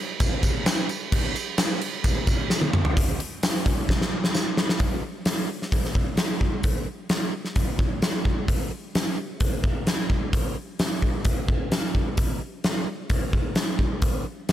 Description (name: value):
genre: rock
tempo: 130 BPM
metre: 4/4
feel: straight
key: none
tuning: none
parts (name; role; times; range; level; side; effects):
- gated 80s drum kit; drums; 0.2-14.5 s; crash cymbal, hi-hat, kick drum, snare drum, toms; -22 LUFS; equal; none
- tambourine; percussion; 0.2-4.4 s; none; -38 LUFS; right 3 dB; none
room: light reverb, small room ambience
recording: none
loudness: -22 LUFS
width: side -12 dB against mid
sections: 0.0-3.0 A section; 3.0-4.8 B section; 4.8-14.5 C section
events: drum fill 2.5-3.0, 3.9-4.8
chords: none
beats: 0.20 0.66 | 1.12 1.58 2.04 2.50 | 2.96 3.42 3.88 4.34 | 4.80 5.26 5.72 6.18 | 6.64 7.10 7.56 8.02 | 8.48 8.94 9.40 9.87 | 10.33 10.79 11.25 11.71 | 12.18 12.64 13.10 13.56 | 14.03 14.49